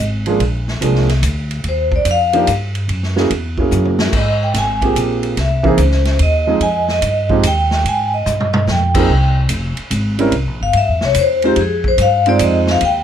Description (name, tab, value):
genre	jazz, small-group swing and bop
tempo	145 BPM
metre	3/4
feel	swing 67% on 8ths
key	F minor, Ab major from 9.1 s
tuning	A4 = 442 Hz
part	upright bass	bass	0.0-13.0 s	F1 to Ab2	-17 LUFS	equal	none
part	warm upright piano	accompaniment	0.3-12.8 s	E3 to C5	-17 LUFS	right 4 dB	none
part	swinging big-band drum kit	drums	0.3-12.9 s	crash cymbal, hi-hat, kick drum, ride cymbal, snare drum, toms	-22 LUFS	equal	none
part	vibraphone with medium hard mallets	melody	1.7-13.0 s	G4 to Ab5	-16 LUFS	left 2 dB	none
room	light reverb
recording	none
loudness	-13 LUFS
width	side -9 dB against mid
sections	0.0-9.1 A section; 9.1-13.0 A section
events	vibraphone solo 0.0-13.0; drum fill 3.7-4.1, 8.3-8.7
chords	0.4 Bb7; 1.6 Ebadd9; 2.9 Gb9; 4.1 Abmaj13; 5.4 Caug; 6.6 Fm9; 9.1 Ab6; 10.3 C; 11.6 Fm7